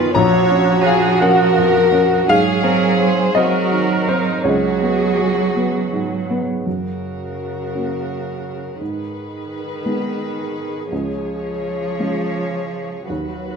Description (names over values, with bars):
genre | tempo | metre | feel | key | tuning
neoclassical piano and strings | 56 BPM (dotted quarters) | 6/8 | rubato | F# major | A4 = 440 Hz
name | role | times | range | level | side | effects
muted chamber violin section | melody | 0.0-13.6 s | D#4 to C#5 | -21 LUFS | left 3 dB | none
muted cello | second line | 0.0-13.6 s | C#3 to F#3 | -22 LUFS | right 5 dB | none
muted viola | accompaniment | 0.0-13.6 s | E#4 to B#4 | -23 LUFS | right 3 dB | none
warm upright piano | accompaniment | 0.0-13.6 s | A#1 to A#5 | -21 LUFS | left 1 dB | none
room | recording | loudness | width
moderate scoring stage reverb, RT60 1.5 s | minimal, uncompressed stereo recording | -16 LUFS | side -5 dB against mid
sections
0.0-6.7 A section; 6.7-13.6 B section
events
none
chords
0.2 F#maj7/A#; 2.3 G#7; 4.5 C#7sus4; 6.7 F#; 8.8 G#m; 10.9 C#